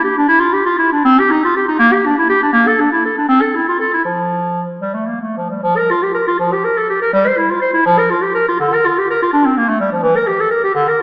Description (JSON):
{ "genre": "classical, baroque-style fantasia for unaccompanied clarinet", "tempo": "72-85 BPM (dotted quarters)", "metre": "6/8", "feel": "rubato", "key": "F major", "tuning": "A4 = 440 Hz", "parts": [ { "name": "clear clarinet", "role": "solo", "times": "0.0-11.0 s", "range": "D3 to C5", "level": "-11 LUFS", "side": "equal", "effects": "none" } ], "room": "wet recital hall reverb, RT60 1.7 s", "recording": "heard from further back in the room, small speaker sound", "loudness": "-11 LUFS", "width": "side -26 dB against mid", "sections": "0.0-5.6 A section; 5.6-11.0 A section", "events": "none", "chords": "none" }